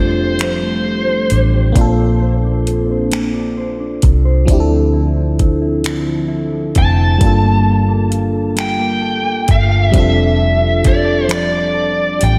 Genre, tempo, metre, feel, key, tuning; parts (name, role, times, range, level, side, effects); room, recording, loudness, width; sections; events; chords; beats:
slow six-eight R&B; 44 BPM (dotted quarters); 6/8; straight; G dorian; A4 = 439 Hz
smooth overdriven lead guitar; melody; 0.0-1.4, 6.8-12.4 s; C5 to A5; -21 LUFS; equal; diffuse ambient delay
mellow electric guitar; second line; 0.0-12.4 s; D3 to C5; -24 LUFS; equal
FM electric piano; accompaniment; 0.0-12.4 s; F3 to A4; -21 LUFS; equal; chorus, phaser
vintage muted fingered electric bass; bass; 0.0-12.4 s; F1 to D2; -18 LUFS; equal
smooth R&B drum kit; drums; 0.4-12.4 s; finger snaps, hi-hat, kick drum; -18 LUFS; equal
moderate lush hall reverb, RT60 2.7 s; dreamy mix soaked in reverb; -15 LUFS; mono
0.0-12.4 A section
0.0 F69; 1.8 Bbmaj9; 4.5 Dm9; 7.2 Gm9; 9.9 F69
0.39 | 1.76 3.12 | 4.48 5.85 | 7.21 8.57 | 9.94 11.30